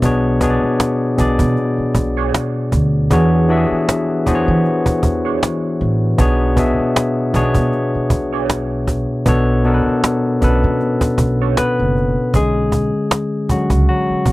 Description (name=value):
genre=R&B, neo-soul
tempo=78 BPM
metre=4/4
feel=swing 55% on 16ths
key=B dorian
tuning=A4 = 439 Hz
part: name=barky tine electric piano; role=accompaniment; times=0.0-14.3 s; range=B2 to E5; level=-16 LUFS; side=left 2 dB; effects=overdrive
part: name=upright bass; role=bass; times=0.0-14.3 s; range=F#1 to E3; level=-17 LUFS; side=right 1 dB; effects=none
part: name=cajon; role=drums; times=0.0-14.3 s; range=none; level=-18 LUFS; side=right 1 dB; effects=none
part: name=electric guitar through a small old amp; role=second line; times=2.2-11.6 s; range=D4 to C#5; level=-26 LUFS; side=right 14 dB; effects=wah, spring reverb
room=little or no reverb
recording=dry, close 1970s-style studio recording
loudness=-14 LUFS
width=side -18 dB against mid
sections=0.0-12.3 A section; 12.3-14.3 B section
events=tine electric piano solo 12.3-14.3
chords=0.0 Bm69; 3.1 E13; 6.2 Bm69; 9.3 Bm9; 12.3 Bm69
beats=| 0.03 0.80 1.56 2.33 | 3.10 3.87 4.64 5.41 | 6.18 6.95 7.72 8.49 | 9.26 10.03 10.80 11.56 | 12.33 13.10 13.87